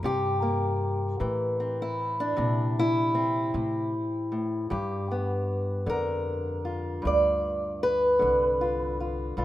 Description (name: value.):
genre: acoustic country blues, solo or duo.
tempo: 51 BPM (dotted quarters).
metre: 12/8.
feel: straight.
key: G mixolydian.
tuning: A4 = 440 Hz.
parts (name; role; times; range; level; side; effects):
fingerpicked old ladder-braced acoustic guitar; melody; 0.0-9.4 s; G2 to D5; -26 LUFS; equal; none.
upright bass; bass; 0.0-9.4 s; B1 to Bb2; -32 LUFS; equal; none.
room: moderate lush hall reverb, RT60 2.9 s.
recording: rough home demo mix.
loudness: -25 LUFS.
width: side -14 dB against mid.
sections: 0.0-9.4 A section.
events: none.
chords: 0.0 C7; 4.7 G7.